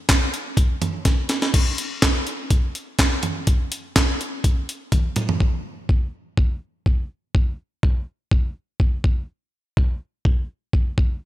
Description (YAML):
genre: pop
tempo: 124 BPM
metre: 4/4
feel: straight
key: none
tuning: none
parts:
  - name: breakbeat sampler-style drum kit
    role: drums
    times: 0.1-11.1 s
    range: crash cymbal, handclaps, hi-hat, kick drum, snare drum, toms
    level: -18 LUFS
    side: equal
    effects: gated reverb
room: light reverb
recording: bright 1980s-style digital production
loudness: -20 LUFS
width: side -15 dB against mid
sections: 0.0-1.5 A section; 1.5-5.4 B section; 5.4-11.3 C section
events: drum fill 1.1-1.5, 4.9-5.4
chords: none